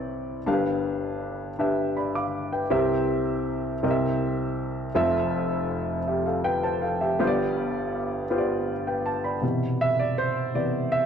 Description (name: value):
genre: gospel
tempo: 54 BPM (dotted quarters)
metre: 6/8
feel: straight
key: C major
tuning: A4 = 440 Hz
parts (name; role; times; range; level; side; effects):
- warm baby grand piano; solo; 0.0-11.1 s; F1 to D6; -24 LUFS; equal; none
room: moderate recital hall reverb, RT60 1.5 s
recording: dark, warm production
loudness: -24 LUFS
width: side -7 dB against mid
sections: 0.5-9.4 A section; 9.4-11.1 B section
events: grand piano solo 9.4-11.1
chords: 0.5 G7; 2.7 C7; 5.0 Fmaj7; 7.2 G7; 9.4 Cmaj7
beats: | 0.47 1.59 | 2.71 3.83 | 4.95 6.07 | 7.19 8.31 | 9.43 10.55